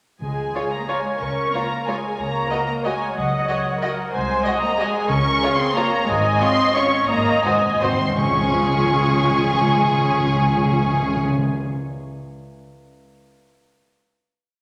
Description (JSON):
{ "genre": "classical, orchestral ballroom waltz", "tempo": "150-198 BPM", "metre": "3/4", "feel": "rubato", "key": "Db major", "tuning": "A4 = 440 Hz", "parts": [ { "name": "muted studio violin section", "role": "melody", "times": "0.2-11.2 s", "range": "Gb5 to Db6", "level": "-26 LUFS", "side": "equal", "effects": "none" }, { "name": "muted studio viola section", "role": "accompaniment", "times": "0.2-11.2 s", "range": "Ab3 to Eb5", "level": "-26 LUFS", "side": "equal", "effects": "none" }, { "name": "muted chamber cello section", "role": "bass", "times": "0.2-11.2 s", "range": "Gb3 to Db4", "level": "-29 LUFS", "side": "equal", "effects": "none" }, { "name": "muted studio double bass section", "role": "bass", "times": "0.2-11.2 s", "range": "Ab1 to Db2", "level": "-32 LUFS", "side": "equal", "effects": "none" }, { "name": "timpani", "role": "percussion", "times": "0.2-0.7, 5.1-11.5 s", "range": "Ab2 to Db3", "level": "-26 LUFS", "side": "equal", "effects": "none" }, { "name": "muted chamber violin section", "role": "second line", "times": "0.5-11.2 s", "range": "F4 to Ab5", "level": "-27 LUFS", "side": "equal", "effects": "none" } ], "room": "wet scoring stage reverb, RT60 2.0 s", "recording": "none", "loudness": "-20 LUFS", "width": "mono", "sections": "0.2-8.2 A section; 8.2-10.4 final chord", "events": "slowing down 5.6-8.2; timpani fill 7.1-8.2", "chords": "0.2 Db5; 2.2 Ebm7/Db; 4.1 Ab/C; 5.1 Db5; 6.1 Db5/Ab; 7.1 Ab; 8.2 Db" }